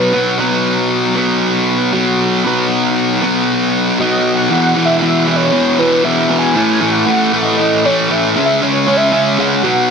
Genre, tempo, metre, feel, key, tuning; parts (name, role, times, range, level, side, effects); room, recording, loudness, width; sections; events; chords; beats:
rock; 117 BPM; 4/4; straight; A4 = 440 Hz
warm velvety synth lead; melody; 0.0-0.3, 4.0-9.9 s; B4 to G#5; -17 LUFS; equal; chorus, plate reverb, analog delay
thick fuzz guitar; riff; 0.0-9.9 s; E2 to C#4; -12 LUFS; equal; distortion
moderate studio reverb, RT60 0.8 s; heavily compressed radio sound; -11 LUFS; side -6 dB against mid
0.4-4.5 A section; 4.5-9.9 B section
0.4 B5; 4.5 E5; 6.6 A5; 8.4 C#5
| 0.39 0.91 1.42 1.94 | 2.45 2.97 3.48 4.00 | 4.51 5.03 5.54 6.05 | 6.57 7.08 7.59 8.11 | 8.62 9.13 9.65